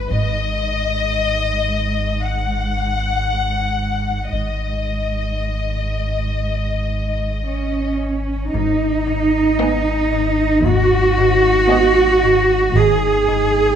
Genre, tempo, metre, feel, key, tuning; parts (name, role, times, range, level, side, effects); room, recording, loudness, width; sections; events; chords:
cinematic, suspense film score; 57 BPM; 4/4; straight; G# minor; A4 = 441 Hz
warm studio violin section; melody; 0.0-12.5 s; B4 to G#5; -22 LUFS; left 6 dB
warm studio cello section; bass; 0.0-13.8 s; G#2 to G#4; -18 LUFS; right 2 dB
punchy sub bass; drone; 0.0-13.8 s; G#1; -24 LUFS; equal
rich studio double bass section; bass; 0.1-13.6 s; G#1 to D#2; -22 LUFS; right 4 dB
concert harp; riff; 8.5-13.8 s; G#2 to G#3; -23 LUFS; left 10 dB
rich studio violin section; second line; 9.6-12.5 s; D#5; -27 LUFS; left 1 dB
clear symphonic viola section; accompaniment; 9.6-12.5 s; B3; -26 LUFS; right 1 dB
moderate scoring stage reverb, RT60 1.6 s; -16 LUFS; side -8 dB against mid
0.0-8.5 A section; 8.5-13.8 A section
0.1 D#m/G#; 8.5 G#m